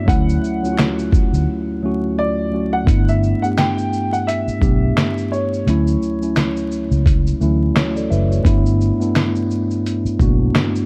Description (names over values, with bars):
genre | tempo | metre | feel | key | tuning
lo-fi hip hop | 86 BPM | 4/4 | swing 56% on 16ths | unclear | A4 = 441 Hz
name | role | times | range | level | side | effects
warm upright piano | melody | 0.0-7.0 s | C#5 to G5 | -27 LUFS | equal | analog delay
mellow tine electric piano | accompaniment | 0.0-10.9 s | D2 to E5 | -22 LUFS | equal | none
vintage muted fingered electric bass | bass | 0.1-10.5 s | F#1 to D2 | -20 LUFS | equal | none
lo-fi sampler-style drum kit | drums | 0.1-10.9 s | finger snaps, hi-hat, kick drum, shaker, snare drum | -20 LUFS | equal | overdrive, vintage 12-bit sampler grit
finger snaps | percussion | 0.8-1.0 s | none | -41 LUFS | equal | none
room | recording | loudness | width
little or no reverb | dark, warm production, vinyl crackle | -18 LUFS | mono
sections
0.0-2.9 A section; 2.9-10.9 B section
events
break 1.5-2.9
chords
0.1 Dmaj9; 2.9 G69; 5.7 Dmaj9; 8.5 G69